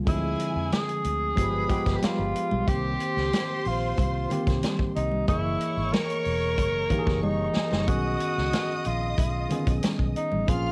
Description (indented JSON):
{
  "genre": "lush 1970s-style soul",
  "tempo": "92 BPM",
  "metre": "4/4",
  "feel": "straight",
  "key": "unclear",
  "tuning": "A4 = 440 Hz",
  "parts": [
    { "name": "tine electric piano", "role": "accompaniment", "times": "0.0-10.7 s", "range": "D3 to Eb5", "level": "-33 LUFS", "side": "equal", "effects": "cassette tape" },
    { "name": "vintage muted fingered electric bass", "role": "bass", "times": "0.0-10.7 s", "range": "Fb1 to F2", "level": "-32 LUFS", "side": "equal", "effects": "none" },
    { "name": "breathy tenor saxophone", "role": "melody", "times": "0.1-10.7 s", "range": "Eb4 to Bb4", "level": "-31 LUFS", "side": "equal", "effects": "cassette tape" },
    { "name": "rich studio string section", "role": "second line", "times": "0.1-10.7 s", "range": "Ab4 to F6", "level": "-39 LUFS", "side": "equal", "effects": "cassette tape" },
    { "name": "vintage drum kit", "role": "drums", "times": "0.1-10.6 s", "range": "hi-hat, kick drum, snare drum", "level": "-31 LUFS", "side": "equal", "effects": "cassette tape" },
    { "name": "congas", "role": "percussion", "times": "0.7-10.6 s", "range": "none", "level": "-36 LUFS", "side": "equal", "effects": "none" }
  ],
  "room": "light reverb",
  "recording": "home recording on cassette",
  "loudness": "-26 LUFS",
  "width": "mono",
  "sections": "0.0-10.7 A section",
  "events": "drum fill 7.2-7.9",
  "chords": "0.1 Dm7b5; 1.4 G7b9; 2.7 Cm7; 5.3 Gb13; 7.9 B69"
}